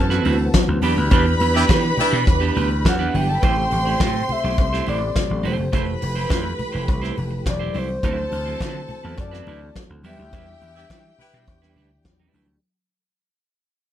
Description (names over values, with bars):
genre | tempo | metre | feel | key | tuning
disco | 104 BPM | 4/4 | straight | E minor | A4 = 438 Hz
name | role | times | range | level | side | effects
warm studio violin section | second line | 0.0-12.3 s | D4 to C6 | -26 LUFS | equal | none
mellow tonewheel organ | sustained chords | 0.0-12.6 s | C3 to G4 | -30 LUFS | left 1 dB | chorus vibrato, slow rotary speaker
vintage slap bass | bass | 0.0-12.6 s | E1 to E3 | -23 LUFS | equal | none
clean electric guitar | accompaniment | 0.1-12.5 s | F#3 to D5 | -26 LUFS | right 8 dB | none
soft brush drum kit | drums | 0.1-12.5 s | hi-hat, kick drum, snare drum | -20 LUFS | equal | none
congas | percussion | 0.2-12.5 s | none | -31 LUFS | left 3 dB | none
cowbell | percussion | 0.5-12.2 s | none | -36 LUFS | left 8 dB | none
clear horn section | stabs | 1.6-2.2, 10.8-11.4 s | D4 to B4 | -22 LUFS | left 1 dB | none
breathy reedy wooden-headed alto flute | melody | 2.9-12.0 s | C5 to G5 | -27 LUFS | left 1 dB | none
room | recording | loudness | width
light reverb, small room reverb | dark, warm production | -18 LUFS | side -11 dB against mid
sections
0.0-12.6 A section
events
band accent 1.1-3.4, 10.3-12.6; fade-out 1.6-12.6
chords
0.0 D13; 0.8 Em7; 3.4 Am7; 5.7 Fmaj9; 8.0 D13; 10.0 Em7